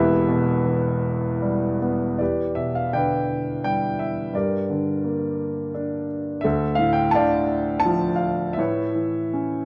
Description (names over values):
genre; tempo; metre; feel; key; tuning
classical, lyrical solo piano; 85 BPM; 3/4; uneven beats, rubato; E phrygian; A4 = 440 Hz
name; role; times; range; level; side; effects
warm grand piano; solo; 0.0-9.7 s; E1 to A5; -23 LUFS; equal; none
room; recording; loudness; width
light reverb; dark, warm production; -23 LUFS; mono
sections
0.0-2.2 A section; 2.2-9.7 B section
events
none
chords
0.0 Em; 2.2 Em7; 4.3 Gm; 6.4 Dm; 8.6 Aadd9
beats
0.67 1.43 | 2.20 2.93 3.64 | 4.34 5.04 5.75 | 6.45 7.14 7.87 | 8.59 9.32